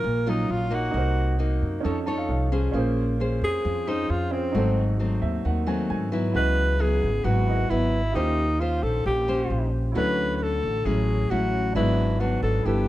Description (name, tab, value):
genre	bossa nova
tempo	133 BPM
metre	4/4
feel	straight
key	unclear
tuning	A4 = 440 Hz
part	breathy alto saxophone	melody	0.0-12.9 s	C4 to B4	-26 LUFS	equal	plate reverb
part	clear baby grand piano	accompaniment	0.0-12.9 s	A3 to A5	-34 LUFS	right 5 dB	none
part	nylon-string guitar	accompaniment	0.0-12.9 s	G2 to Db5	-28 LUFS	left 2 dB	none
part	upright bass	bass	0.0-12.9 s	G1 to Ab2	-25 LUFS	equal	none
room	light reverb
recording	dark, warm production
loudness	-22 LUFS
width	side -15 dB against mid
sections	0.0-6.4 A section; 6.4-12.9 B section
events	grand piano fill 1.8-2.8, 5.0-6.4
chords	0.0 Ebm9; 0.9 Cm7b5; 1.8 F7b13; 2.8 Bbm9; 4.6 Ab7b9; 6.4 C#m11; 8.2 D#13; 10.0 Dmaj9; 11.8 G#m7b5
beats	0.04 0.50 | 0.95 1.40 1.85 2.30 | 2.75 3.20 3.65 4.10 | 4.55 5.00 5.45 5.90 | 6.35 6.80 7.25 7.71 | 8.16 8.61 9.06 9.51 | 9.96 10.41 10.86 11.31 | 11.76 12.21 12.66